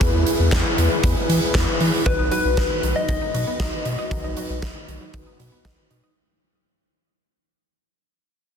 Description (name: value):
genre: synth-pop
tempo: 117 BPM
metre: 4/4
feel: straight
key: B major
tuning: A4 = 441 Hz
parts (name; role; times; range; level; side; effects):
- mellow synth brass; accompaniment; 0.0-6.1 s; D#4 to B4; -26 LUFS; left 1 dB; chorus
- round analog bass; bass; 0.0-6.0 s; B1 to E3; -22 LUFS; equal; none
- huge arena drum kit; drums; 0.0-6.0 s; handclaps, hi-hat, kick drum, snare drum; -22 LUFS; equal; none
- soft struck synth lead; melody; 2.1-5.6 s; B4 to D#5; -26 LUFS; left 5 dB; chorus, ping-pong delay
- analog pluck; arpeggios; 2.1-6.2 s; D#3 to D#5; -34 LUFS; right 4 dB; chorus, ping-pong delay
room: light reverb, small room reverb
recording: dense, heavily limited modern master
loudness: -18 LUFS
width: side -7 dB against mid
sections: 0.0-2.1 A section; 2.1-6.2 B section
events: fade-out 2.1-6.2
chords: 0.0 E; 2.1 B